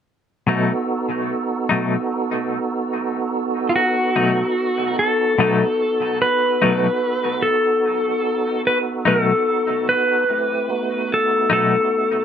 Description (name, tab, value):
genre	blues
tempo	49 BPM (dotted quarters)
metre	12/8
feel	straight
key	B mixolydian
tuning	A4 = 440 Hz
part	semi-hollow electric guitar	accompaniment	0.5-11.8 s	B2 to D#4	-21 LUFS	left 4 dB	tremolo, dub echo
part	tonewheel organ	sustained chords	0.5-12.2 s	A3 to A4	-23 LUFS	right 4 dB	slow rotary speaker, overdrive, chorus vibrato
part	clean lap steel guitar	melody	3.7-12.2 s	E#4 to B4	-18 LUFS	left 1 dB	none
room	moderate spring reverb, RT60 1.2 s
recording	echo-heavy mix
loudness	-17 LUFS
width	side -8 dB against mid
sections	0.5-5.4 A section; 5.4-12.2 B section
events	none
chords	0.5 B7